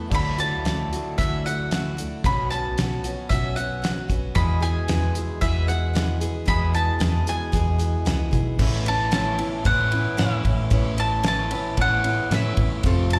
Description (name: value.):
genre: folk rock and heartland rock.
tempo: 113 BPM.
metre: 4/4.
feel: straight.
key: A major.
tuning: A4 = 440 Hz.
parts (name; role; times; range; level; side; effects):
picked steel-string acoustic guitar; accompaniment; 0.0-13.2 s; B2 to B4; -35 LUFS; equal; slapback echo.
electric guitar through a small old amp; riff; 0.0-13.2 s; E2 to G#4; -33 LUFS; equal; slapback echo.
bowl-back mandolin; melody; 0.1-13.2 s; E5 to B5; -29 LUFS; equal; slapback echo, digital delay.
hollow-body short-scale picked electric bass; bass; 0.1-13.2 s; F1 to A2; -26 LUFS; equal; none.
damped 70s drum kit; drums; 0.1-13.2 s; crash cymbal, hi-hat, kick drum, ride cymbal, snare drum; -28 LUFS; equal; none.
room: small room ambience.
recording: live gig heard through the venue's PA, recital hall reverb.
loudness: -23 LUFS.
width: mono.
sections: 0.1-8.6 A section; 8.6-13.2 B section.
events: none.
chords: 0.1 Dadd9; 2.2 Bsus2; 4.4 E; 8.6 Aadd9.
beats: | 0.12 0.65 1.18 1.71 | 2.23 2.77 3.29 3.83 | 4.35 4.88 5.42 5.95 | 6.47 7.01 7.54 8.07 | 8.60 9.13 9.66 10.19 | 10.72 11.25 11.78 12.31 | 12.85.